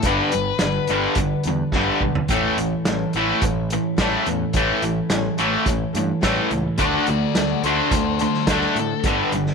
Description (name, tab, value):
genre	classic rock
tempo	107 BPM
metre	4/4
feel	straight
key	A mixolydian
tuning	A4 = 440 Hz
part	biting overdriven guitar	second line	0.0-1.1, 6.8-9.0 s	F#4 to D5	-26 LUFS	left 12 dB	none
part	picked old ladder-braced acoustic guitar	accompaniment	0.0-9.5 s	A2 to B4	-30 LUFS	left 10 dB	none
part	cranked stack guitar	riff	0.0-9.5 s	G2 to D4	-20 LUFS	right 1 dB	overdrive
part	growling fingered electric bass	bass	0.0-9.5 s	G1 to A2	-28 LUFS	right 1 dB	overdrive
part	vintage drum kit	drums	0.0-9.5 s	hi-hat, kick drum, snare drum, toms	-24 LUFS	right 1 dB	none
room	light reverb, small room ambience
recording	1960s-style stereo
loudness	-18 LUFS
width	side -5 dB against mid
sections	0.0-9.5 A section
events	drum fill 1.7-2.3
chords	0.0 G; 2.3 A; 6.8 D; 9.0 G